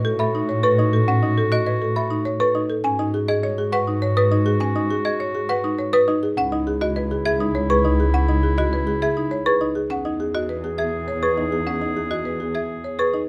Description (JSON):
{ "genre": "classical, minimalist pattern music", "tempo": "102 BPM", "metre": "3/4", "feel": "straight", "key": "A lydian", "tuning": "A4 = 440 Hz", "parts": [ { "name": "folk marimba with medium mallets", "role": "melody", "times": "0.0-13.2 s", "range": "G#4 to G#5", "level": "-26 LUFS", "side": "equal", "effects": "none" }, { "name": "bright clarinet", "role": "second line", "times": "0.0-13.2 s", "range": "E4 to G#4", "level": "-31 LUFS", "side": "equal", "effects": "none" }, { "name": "buzzing marimba with medium hard mallets", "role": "arpeggios", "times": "0.0-13.3 s", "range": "C#4 to C#5", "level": "-28 LUFS", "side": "equal", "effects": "none" }, { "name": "small celesta", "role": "arpeggios", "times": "0.0-13.3 s", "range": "D#5 to D#6", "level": "-31 LUFS", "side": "equal", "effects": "none" }, { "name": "warm symphonic double bass section", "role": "bass", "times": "0.0-13.3 s", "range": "C#2 to A2", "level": "-27 LUFS", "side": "equal", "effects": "none" } ], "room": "light reverb", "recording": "none", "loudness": "-21 LUFS", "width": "mono", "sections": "0.0-13.3 A section", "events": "none", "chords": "0.0 A69; 2.8 G#m7; 6.4 C#madd9; 9.9 E69" }